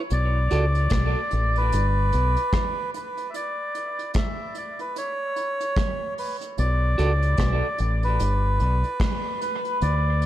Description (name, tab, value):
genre	dub reggae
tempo	74 BPM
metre	4/4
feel	swing 58% on 16ths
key	unclear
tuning	A4 = 444 Hz
part	melodica	melody	0.1-10.3 s	B4 to E5	-26 LUFS	equal	dub echo
part	deep dub fingered electric bass	bass	0.1-10.3 s	G1 to D2	-21 LUFS	equal	none
part	vintage brush drum kit	drums	0.1-10.3 s	hi-hat, kick drum, rim click	-28 LUFS	equal	none
part	clean electric guitar	accompaniment	0.5-0.6, 7.0-7.1 s	F#4 to D5	-33 LUFS	right 4 dB	dub echo
room	light reverb, studio ambience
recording	echo-heavy mix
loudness	-22 LUFS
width	side -13 dB against mid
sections	0.0-10.3 A section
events	break 3.3-6.6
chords	0.1 Bm7; 1.7 G; 3.3 N.C.; 6.6 Bm7; 8.2 G